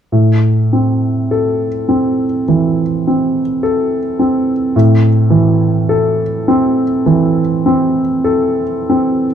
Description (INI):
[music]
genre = classical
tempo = 45-54 BPM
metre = 4/4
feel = rubato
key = A minor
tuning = A4 = 440 Hz
[part]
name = clear concert grand piano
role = accompaniment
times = 0.1-9.3 s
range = A2 to A4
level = -11 LUFS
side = equal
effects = none
[sound]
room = light reverb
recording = dark, warm production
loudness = -11 LUFS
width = side -8 dB against mid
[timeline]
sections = 0.1-9.3 A section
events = none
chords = 0.1 Am